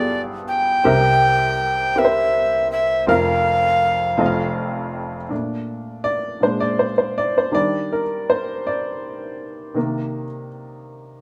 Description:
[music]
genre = slow gospel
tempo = 54 BPM (dotted quarters)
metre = 6/8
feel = straight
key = Bb major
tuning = A4 = 438 Hz
[part]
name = tenor recorder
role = melody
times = 0.0-4.5 s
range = D5 to G5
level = -20 LUFS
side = equal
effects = none
[part]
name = warm upright piano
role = accompaniment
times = 0.0-11.2 s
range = F1 to F5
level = -23 LUFS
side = equal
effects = none
[sound]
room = wet large studio reverb, RT60 0.9 s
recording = band playing live in one room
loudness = -20 LUFS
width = mono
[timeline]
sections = 0.0-5.3 A section; 5.3-11.2 B section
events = upright piano solo 5.3-11.2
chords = 0.0 G7; 0.9 C7; 3.1 Fsus4; 4.2 F; 5.3 Bbmaj7; 6.4 Bb7; 7.5 Ebmaj7; 9.8 Cm7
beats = | 0.85 1.97 | 3.08 4.19 | 5.31 6.42 | 7.53 8.64 | 9.76 10.87

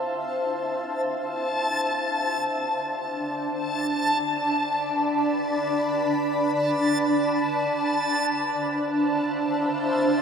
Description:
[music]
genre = ambient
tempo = free time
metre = none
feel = none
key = D dorian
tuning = A4 = 440 Hz
[part]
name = granular cloud pad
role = sustained chords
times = 0.0-10.2 s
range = D4 to B5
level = -24 LUFS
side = equal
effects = built-in reverb
[part]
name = backwards swelling texture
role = texture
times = 0.0-10.2 s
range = A5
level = -27 LUFS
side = left 1 dB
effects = built-in reverb
[sound]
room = wet echo chamber reverb, RT60 2.6 s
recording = none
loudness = -22 LUFS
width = side -6 dB against mid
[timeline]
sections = 0.0-10.2 A section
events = fade-in on ambient pad 0.0-10.2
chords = 0.0 Dm11; 2.6 Em7/D; 7.9 Dm11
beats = free time

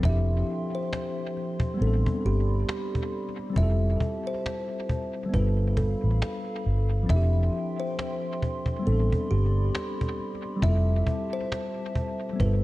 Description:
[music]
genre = lo-fi hip hop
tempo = 68 BPM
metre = 4/4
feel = swing 58% on 16ths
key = unclear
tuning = A4 = 438 Hz
[part]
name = mellow tine electric piano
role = accompaniment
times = 0.0-12.6 s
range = F3 to A4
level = -31 LUFS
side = left 1 dB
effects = medium stereo tremolo, cassette tape, dub echo
[part]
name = warbly tape-like pad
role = sustained chords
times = 0.0-12.6 s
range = F3 to C6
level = -40 LUFS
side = equal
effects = chorus, built-in reverb
[part]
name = vintage muted fingered electric bass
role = bass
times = 0.0-12.6 s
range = F1 to A1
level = -23 LUFS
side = equal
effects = none
[part]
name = cajon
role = drums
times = 0.0-12.6 s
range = none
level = -31 LUFS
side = equal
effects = dub echo
[part]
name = kalimba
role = melody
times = 0.1-12.6 s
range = G4 to E5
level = -33 LUFS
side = equal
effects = dub echo
[sound]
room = light reverb, small room ambience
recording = echo-heavy mix, cassette tape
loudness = -24 LUFS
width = side -18 dB against mid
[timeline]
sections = 0.0-12.6 A section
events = none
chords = 0.0 Dm11/F; 1.8 Am11; 3.6 Fmaj9; 5.3 G9; 7.1 Dm11/F; 8.9 Am11; 10.6 Fmaj9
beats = | 0.04 0.92 1.80 2.69 | 3.57 4.45 5.33 6.21 | 7.10 7.98 8.86 9.74 | 10.63 11.51 12.39

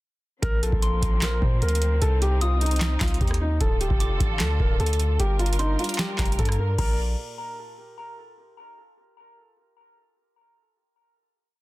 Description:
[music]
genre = hip hop, trap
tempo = 151 BPM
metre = 4/4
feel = half-time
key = Bb major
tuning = A4 = 440 Hz
[part]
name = felt-muted upright piano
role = melody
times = 0.4-7.0 s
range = Eb4 to C5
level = -30 LUFS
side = equal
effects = tape echo
[part]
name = muted studio string section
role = sustained chords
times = 0.4-7.0 s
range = Bb2 to D5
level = -33 LUFS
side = right 1 dB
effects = none
[part]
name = long sustained 808-style bass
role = bass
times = 0.4-7.2 s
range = D1 to Bb2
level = -24 LUFS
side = equal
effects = none
[part]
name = booming analog drum machine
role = drums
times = 0.4-7.0 s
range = crash cymbal, handclaps, hi-hat, kick drum, rim click, snare drum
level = -25 LUFS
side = equal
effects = none
[part]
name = soft synth bell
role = second line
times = 0.8-7.0 s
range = Bb5 to Eb6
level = -37 LUFS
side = left 2 dB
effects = chorus, phaser, tape echo
[sound]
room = digital ambience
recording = dense, heavily limited modern master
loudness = -21 LUFS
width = side -19 dB against mid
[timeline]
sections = 0.4-6.8 hook; 6.8-8.4 final chord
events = none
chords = 0.4 Bbsus2; 2.0 Cm; 3.6 Dm; 5.2 Gm7; 6.8 N.C.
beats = | 0.43 0.82 1.22 1.62 | 2.02 2.41 2.81 3.21 | 3.61 4.00 4.40 4.80 | 5.20 5.59 5.99 6.39 | 6.79

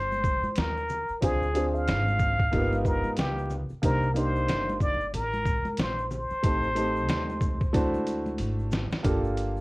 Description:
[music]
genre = hip hop, jazz-hop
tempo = 92 BPM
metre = 4/4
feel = swing 59% on 16ths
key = unclear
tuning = A4 = 440 Hz
[part]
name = trumpet with plunger mute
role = melody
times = 0.0-8.0 s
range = G4 to F5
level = -29 LUFS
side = equal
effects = plate reverb
[part]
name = upright bass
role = bass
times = 0.0-9.6 s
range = G1 to Eb2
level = -31 LUFS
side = equal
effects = none
[part]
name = congas and tube shaker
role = percussion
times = 0.1-9.6 s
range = none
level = -39 LUFS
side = left 1 dB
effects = none
[part]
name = trip hop sampler-style drum kit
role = drums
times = 0.2-9.6 s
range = hi-hat, kick drum, shaker, snare drum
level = -29 LUFS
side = equal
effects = none
[part]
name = dark concert grand piano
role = accompaniment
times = 1.2-9.6 s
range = A3 to C5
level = -29 LUFS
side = right 1 dB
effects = none
[sound]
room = light reverb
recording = worn, warbling old tape, cassette tape, vinyl crackle, warbly pitch drift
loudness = -24 LUFS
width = side -22 dB against mid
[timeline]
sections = 0.0-9.0 A section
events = drum fill 7.7-9.0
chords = 0.0 Bbsus2; 1.2 Dm7b5; 2.5 G7alt; 3.8 Cm9; 6.4 Am7b5; 7.7 D7; 9.0 Gm7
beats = 0.57 | 1.22 1.88 2.53 3.18 | 3.83 4.48 5.14 5.79 | 6.44 7.09 7.75 8.40 | 9.05

